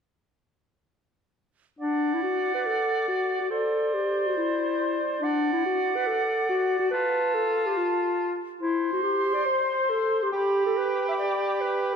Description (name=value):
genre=cinematic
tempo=141 BPM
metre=4/4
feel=straight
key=D mixolydian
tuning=A4 = 442 Hz
part: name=bright concert flute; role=second line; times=1.8-12.0 s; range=D5 to C6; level=-30 LUFS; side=right 7 dB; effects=none
part: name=warm clarinet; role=second line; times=1.8-12.0 s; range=D4 to E5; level=-26 LUFS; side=left 2 dB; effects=none
part: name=warm cor anglais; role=second line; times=1.8-12.0 s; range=F4 to D5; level=-30 LUFS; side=equal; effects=none
room=wet scoring stage reverb, RT60 1.9 s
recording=dark, warm production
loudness=-23 LUFS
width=side -6 dB against mid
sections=1.8-12.0 A section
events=none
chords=1.8 D; 3.5 Cadd9; 5.2 D; 6.9 F; 8.6 N.C.; 10.3 G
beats=| 1.80 2.23 2.66 3.08 | 3.51 3.94 4.37 4.80 | 5.22 5.65 6.08 6.50 | 6.92 7.35 7.78 8.20 | 8.62 9.05 9.48 9.90 | 10.33 10.76 11.19 11.61